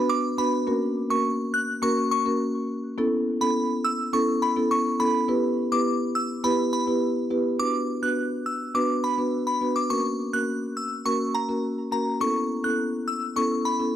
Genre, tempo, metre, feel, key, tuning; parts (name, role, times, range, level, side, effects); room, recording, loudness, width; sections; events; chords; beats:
dancehall; 104 BPM; 4/4; straight; B minor; A4 = 440 Hz
marimba with medium mallets; accompaniment; 0.0-14.0 s; A#3 to B4; -24 LUFS; equal
glassy synth bell; melody; 0.1-13.8 s; A#5 to F#6; -27 LUFS; equal; chorus, phaser
light reverb, small room reverb; dry, gritty hardware recording, transformer saturation; -22 LUFS; side -11 dB against mid
0.0-7.6 A section; 7.6-14.0 B section
0.0 Bm; 0.7 F#; 3.0 Aadd9; 5.3 Em; 7.6 Bm; 9.9 F#; 12.2 Aadd9
0.09 | 0.67 1.25 1.82 2.40 | 2.98 3.56 4.13 4.71 | 5.29 5.86 6.44 7.02 | 7.59 8.17 8.75 9.32 | 9.90 10.48 11.06 11.63 | 12.21 12.79 13.36 13.94